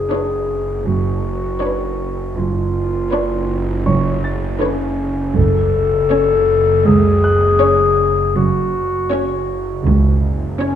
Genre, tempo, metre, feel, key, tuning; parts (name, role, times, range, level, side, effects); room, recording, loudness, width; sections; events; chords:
cinematic, suspense film score; 80 BPM; 4/4; straight; F# harmonic minor; A4 = 440 Hz
dark clarinet; second line; 0.0-10.8 s; C#4 to A4; -18 LUFS; left 3 dB
bowed-like drone; drone; 0.0-10.8 s; F#1; -21 LUFS; right 1 dB; built-in reverb
warm chamber violin section; melody; 0.1-10.8 s; C#5; -26 LUFS; left 6 dB
warm chamber violin section; second line; 0.1-10.8 s; B4 to C#5; -27 LUFS; left 3 dB
warm chamber viola section; accompaniment; 0.1-10.8 s; D3 to D4; -25 LUFS; right 1 dB
warm chamber double bass section; bass; 0.9-10.5 s; F#1 to C#2; -20 LUFS; right 3 dB
warm studio cello section; bass; 0.9-10.5 s; C#2 to F#2; -20 LUFS; right 3 dB
warm grand piano; texture; 3.9-10.8 s; C#5 to A6; -30 LUFS; right 1 dB
taiko ensemble; drums; 5.4-6.8 s; -24 LUFS; right 1 dB
wet scoring stage reverb, RT60 1.8 s; minimal, uncompressed stereo recording; -14 LUFS; side -9 dB against mid
0.0-10.8 A section
0.0 Bmadd9/F#; 5.4 F#m